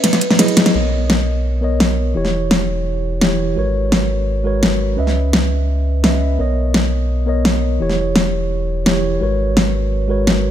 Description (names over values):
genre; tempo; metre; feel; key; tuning
liquid drum and bass; 170 BPM; 4/4; straight; B major; A4 = 439 Hz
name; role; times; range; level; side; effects
mellow tine electric piano; accompaniment; 0.0-10.5 s; E3 to E5; -20 LUFS; right 1 dB; slow stereo tremolo, dub echo
pop drum kit; drums; 0.0-10.3 s; hi-hat, ride cymbal, snare drum; -16 LUFS; equal; overdrive
warm sub bass; bass; 0.7-10.5 s; E1 to C#2; -19 LUFS; equal; tube saturation
room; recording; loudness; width
light reverb; none; -14 LUFS; side -10 dB against mid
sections
0.7-10.5 A section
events
break 0.0-0.7; drum fill 0.0-0.7; band accent 0.7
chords
0.0 F#13sus4; 0.7 Bmaj9; 2.2 Em6; 3.6 G#m11; 5.0 C#m9; 6.4 Bmaj9; 7.8 Em6; 9.2 G#m11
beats
0.04 0.39 | 0.74 1.10 1.45 1.80 | 2.16 2.51 2.86 3.21 | 3.57 3.92 4.27 4.63 | 4.98 5.33 5.69 6.04 | 6.39 6.74 7.10 7.45 | 7.80 8.16 8.51 8.86 | 9.21 9.57 9.92 10.27